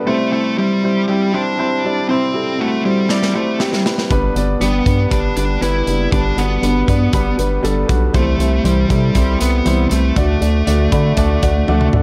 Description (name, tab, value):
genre	piano-driven pop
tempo	119 BPM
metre	4/4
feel	straight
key	unclear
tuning	A4 = 440 Hz
part	warm grand piano	accompaniment	0.0-12.0 s	G2 to B5	-22 LUFS	equal	none
part	dark smooth lead guitar	melody	0.1-11.9 s	G3 to E4	-22 LUFS	equal	overdrive
part	modern studio drum kit	drums	3.1-12.0 s	hi-hat, kick drum, snare drum, toms	-22 LUFS	equal	none
part	fingerpicked steel-string acoustic guitar	riff	4.1-12.0 s	C3 to C5	-26 LUFS	equal	none
part	round analog bass	bass	4.1-12.0 s	F#1 to D3	-20 LUFS	equal	none
room	studio reverb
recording	none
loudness	-16 LUFS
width	mono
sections	0.0-12.0 A section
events	drum fill 3.1-4.1, 11.7-12.0; grand piano fill 10.7-12.0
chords	0.1 C; 4.1 G; 8.1 C; 10.2 D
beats	| 0.07 0.57 1.08 1.58 | 2.09 2.59 3.10 3.60 | 4.11 4.61 5.12 5.62 | 6.13 6.63 7.14 7.64 | 8.15 8.65 9.16 9.66 | 10.16 10.67 11.18 11.68